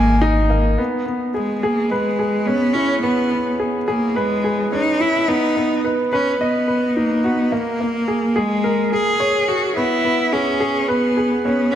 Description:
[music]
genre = piano and strings electronica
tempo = 107 BPM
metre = 4/4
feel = straight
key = C# dorian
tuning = A4 = 440 Hz
[part]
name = rich cello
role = melody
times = 0.0-11.8 s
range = G#3 to G#4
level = -19 LUFS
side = equal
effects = tape echo
[part]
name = clear grand piano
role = riff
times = 0.0-11.8 s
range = A#3 to G#5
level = -20 LUFS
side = equal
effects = tape echo
[part]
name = round analog bass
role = bass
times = 0.0-0.8 s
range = G#1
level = -17 LUFS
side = equal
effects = none
[sound]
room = moderate lush hall reverb, RT60 2.1 s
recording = none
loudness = -16 LUFS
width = side -10 dB against mid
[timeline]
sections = 0.8-11.8 A section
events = none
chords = 0.0 G#sus2; 0.8 C#m7; 5.3 B; 7.5 G#sus4; 9.8 C#m7

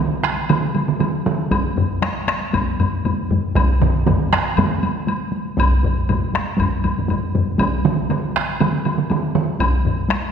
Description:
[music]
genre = japanese traditional, taiko drum ensemble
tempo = 118 BPM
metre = 4/4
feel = straight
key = none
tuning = none
[part]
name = taiko ensemble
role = percussion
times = 0.1-10.3 s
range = none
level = -24 LUFS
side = left 1 dB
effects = none
[part]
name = taiko ensemble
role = percussion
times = 0.2-4.7, 7.8-9.5 s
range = none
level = -20 LUFS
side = right 5 dB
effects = none
[part]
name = woodblock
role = percussion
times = 0.5-10.2 s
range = none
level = -28 LUFS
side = left 4 dB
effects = none
[part]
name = taiko ensemble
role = percussion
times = 1.5-9.7 s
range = none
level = -22 LUFS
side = equal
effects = none
[part]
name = taiko ensemble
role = percussion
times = 1.8-10.2 s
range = none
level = -22 LUFS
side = left 3 dB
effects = none
[sound]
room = wet scoring stage reverb, RT60 1.7 s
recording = recorded in a church or concert hall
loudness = -17 LUFS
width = side -7 dB against mid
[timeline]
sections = 0.0-10.3 A section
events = speeding up 0.0-10.3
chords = none

